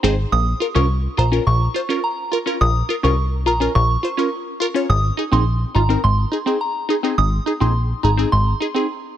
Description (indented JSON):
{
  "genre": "dancehall",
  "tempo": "105 BPM",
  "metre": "4/4",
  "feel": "straight",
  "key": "Bb minor",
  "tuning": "A4 = 440 Hz",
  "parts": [
    { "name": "wavetable chord stab", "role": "accompaniment", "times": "0.0-8.9 s", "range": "C4 to Db5", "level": "-22 LUFS", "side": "equal", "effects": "none" },
    { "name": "plucky analog bass", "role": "bass", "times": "0.0-8.5 s", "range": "Ab1 to C2", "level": "-17 LUFS", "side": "equal", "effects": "none" },
    { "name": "soft synth bell", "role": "melody", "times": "0.3-8.7 s", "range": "Bb5 to Eb6", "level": "-23 LUFS", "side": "right 2 dB", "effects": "chorus, tape echo" }
  ],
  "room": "light reverb, digital ambience",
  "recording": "none",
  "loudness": "-16 LUFS",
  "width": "side -11 dB against mid",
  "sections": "0.3-9.2 A section",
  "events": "none",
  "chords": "0.3 Bbm; 4.9 Ab"
}